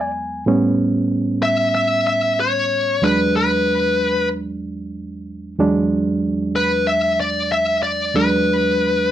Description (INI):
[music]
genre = blues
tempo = 94 BPM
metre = 4/4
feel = swing 55% on 16ths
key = E mixolydian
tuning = A4 = 438 Hz
[part]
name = smooth overdriven lead guitar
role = melody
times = 0.0-9.1 s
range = B4 to E5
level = -17 LUFS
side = left 2 dB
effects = none
[part]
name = bright reed electric piano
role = accompaniment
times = 0.0-9.1 s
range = E2 to G#5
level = -20 LUFS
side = right 2 dB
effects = overdrive
[sound]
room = little or no reverb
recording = dry, close 1970s-style studio recording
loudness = -16 LUFS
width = side -11 dB against mid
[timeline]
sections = 0.0-9.1 A section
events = reed electric piano fill 0.0-0.5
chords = 0.5 A7; 3.0 E7